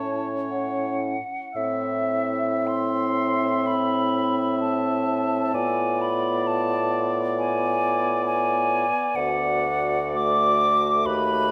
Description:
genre	classical, slow romantic movement for wind quintet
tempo	51-69 BPM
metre	4/4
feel	rubato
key	A minor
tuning	A4 = 440 Hz
part	hollow concert flute	melody	0.0-11.5 s	E5 to D6	-27 LUFS	equal	none
part	clear oboe	second line	0.0-11.5 s	B4 to E5	-31 LUFS	equal	none
part	clear French horn	accompaniment	0.0-11.5 s	A3 to C#4	-32 LUFS	equal	none
part	mellow clarinet	accompaniment	0.0-11.5 s	E4 to F#4	-35 LUFS	equal	none
part	warm bassoon	bass	0.0-11.5 s	D2 to A2	-30 LUFS	equal	none
room	moderate recital hall reverb, RT60 1.6 s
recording	none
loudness	-23 LUFS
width	mono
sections	0.0-1.6 A section; 1.6-11.5 B section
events	none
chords	0.0 A; 1.6 Am; 5.5 G#dim7/A; 9.2 D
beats	0.51 | 1.56 2.68 3.67 4.61 | 5.55 6.47 7.38 8.26 | 9.17 10.15 11.06

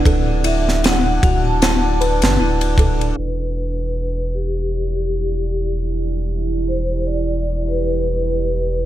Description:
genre	trip hop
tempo	77 BPM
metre	4/4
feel	swing 56% on 16ths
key	E minor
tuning	A4 = 441 Hz
part	deep dark ambient pad	sustained chords	0.0-8.9 s	D4 to F#5	-25 LUFS	right 4 dB	chorus, built-in reverb
part	music box	arpeggios	0.0-3.2 s	E4 to B4	-24 LUFS	left 3 dB	dub echo
part	warm sub bass	bass	0.1-8.9 s	D1 to F#1	-21 LUFS	equal	none
part	crisp fusion drum kit	drums	0.1-3.2 s	kick drum, ride cymbal, snare drum	-18 LUFS	equal	gated reverb
part	vibraphone with medium mallets	melody	0.4-8.9 s	G4 to A5	-24 LUFS	equal	dub echo
room	small room ambience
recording	bright 1980s-style digital production, low-pass filter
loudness	-17 LUFS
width	side -13 dB against mid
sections	0.0-3.2 A section; 3.2-8.9 B section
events	filter sweep on ambient pad 3.2-8.9; filter sweep 3.2-8.9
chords	0.0 D; 3.2 Em7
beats	| 0.06 0.84 1.61 2.39 | 3.17 3.95 4.73 5.51 | 6.29 7.07 7.85 8.63

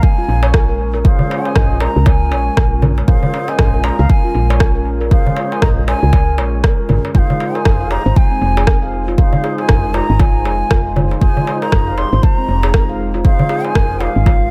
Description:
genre	afro house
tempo	118 BPM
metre	4/4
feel	swing 59% on 16ths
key	F minor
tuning	A4 = 440 Hz
part	hollow bansuri	melody	0.0-14.5 s	F5 to C6	-24 LUFS	equal	analog delay
part	dark analog pad	sustained chords	0.0-14.5 s	Ab3 to C5	-28 LUFS	equal	chorus, sidechain pumping
part	electronic kick drum	drums	0.0-14.4 s	none	-15 LUFS	equal	overdrive
part	handpan	arpeggios	0.2-14.4 s	C4 to F5	-27 LUFS	equal	vintage 12-bit sampler grit, sidechain pumping, analog delay
part	woody FM bass	bass	0.3-14.5 s	F1 to Db2	-19 LUFS	equal	sidechain pumping
part	darbuka	percussion	0.4-14.4 s	none	-24 LUFS	equal	analog delay
part	deep house drum kit	drums	0.5-13.9 s	rim click, toms	-24 LUFS	equal	overdrive, analog delay
part	tonewheel organ	stabs	1.0-14.1 s	Db4 to C5	-29 LUFS	equal	slow rotary speaker, sidechain pumping, analog delay
room	light reverb, studio ambience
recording	echo-heavy mix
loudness	-14 LUFS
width	mono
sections	0.0-14.5 A section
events	none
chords	0.0 Bbm7; 7.1 Fm7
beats	0.03 0.54 | 1.05 1.55 2.06 2.57 | 3.08 3.59 4.10 4.61 | 5.12 5.62 6.13 6.64 | 7.15 7.66 8.16 8.67 | 9.18 9.69 10.20 10.71 | 11.22 11.72 12.23 12.74 | 13.25 13.76 14.27

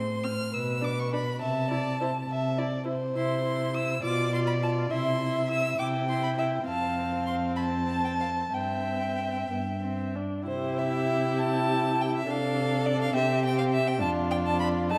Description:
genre	quick classical-period movement for string quartet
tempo	61-70 BPM (dotted quarters)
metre	6/8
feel	rubato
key	A minor, C major from 3.1 s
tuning	A4 = 440 Hz
part	clear violin	melody	0.0-15.0 s	C5 to F6	-35 LUFS	equal	none
part	dark violin	second line	0.0-15.0 s	F4 to A5	-34 LUFS	equal	none
part	rich viola	accompaniment	0.0-15.0 s	B3 to F4	-34 LUFS	equal	none
part	dark cello	bass	0.0-15.0 s	F2 to C3	-33 LUFS	equal	none
room	moderate concert hall reverb, RT60 2.2 s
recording	none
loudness	-28 LUFS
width	mono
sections	0.0-10.5 A section; 10.5-15.0 B section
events	none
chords	0.0 Am; 0.5 Bmadd11; 1.4 Am/C; 4.0 Bdim; 4.9 C; 6.7 F; 8.5 C/G; 9.5 G5; 10.5 C; 12.3 F6/C; 13.2 C5; 14.0 Dm/F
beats	0.53 | 1.41 2.29 | 3.15 4.03 | 4.91 5.80 | 6.68 7.59 | 8.54 9.51 | 10.48 11.39 | 12.29 13.15 | 14.01 14.90

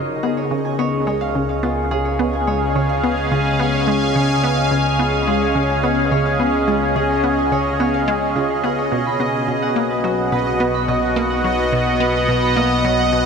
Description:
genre	ambient, sequencer-driven space music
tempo	107 BPM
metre	4/4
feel	straight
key	unclear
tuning	A4 = 440 Hz
part	sweeping resonant pad	sustained chords	0.0-13.3 s	B2 to G#5	-19 LUFS	left 1 dB	chorus
part	Celtic harp	arpeggios	0.0-13.3 s	E#4 to B5	-24 LUFS	right 2 dB	auto-pan, analog delay
part	resonant blip pluck	riff	0.0-13.2 s	B2 to B3	-22 LUFS	equal	chorus, vintage 12-bit sampler grit, analog delay
part	analog drone	bass	1.1-13.3 s	B1 to C#2	-26 LUFS	equal	chorus, phaser
part	bubbling stepped-filter texture	texture	0.0-13.3 s	D#5	-27 LUFS	right 4 dB	chorus, built-in reverb
room	wet huge ambient reverb, RT60 8.0 s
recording	none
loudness	-16 LUFS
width	side -6 dB against mid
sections	0.0-13.3 A section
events	none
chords	0.0 C#; 8.9 B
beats	0.51 1.07 1.63 | 2.19 2.75 3.31 3.87 | 4.43 5.00 5.56 6.12 | 6.68 7.24 7.80 8.36 | 8.92 9.48 10.04 10.60 | 11.16 11.72 12.29 12.85

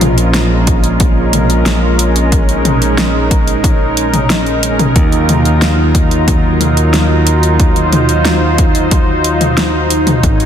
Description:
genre	synthwave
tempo	91 BPM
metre	4/4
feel	straight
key	Eb dorian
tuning	A4 = 440 Hz
part	warm analog pad	sustained chords	0.0-10.5 s	Gb3 to Db5	-14 LUFS	equal	lush chorus, sidechain pumping, shimmer reverb
part	modern bright picked electric bass	bass	0.0-10.5 s	Ab1 to Eb2	-14 LUFS	equal	sidechain pumping
part	pop drum kit	drums	0.0-10.5 s	hi-hat, snare drum, toms	-16 LUFS	equal	overdrive
part	electronic kick drum	drums	0.7-10.4 s	none	-12 LUFS	equal	overdrive
room	light reverb, digital ambience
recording	dense, heavily limited modern master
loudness	-9 LUFS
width	side -9 dB against mid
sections	0.0-10.5 A section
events	none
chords	0.0 Bbm7; 5.0 Ebmadd9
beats	0.34 1.00 1.66 | 2.32 2.98 3.64 4.30 | 4.96 5.62 6.28 6.94 | 7.59 8.26 8.91 9.57 | 10.23

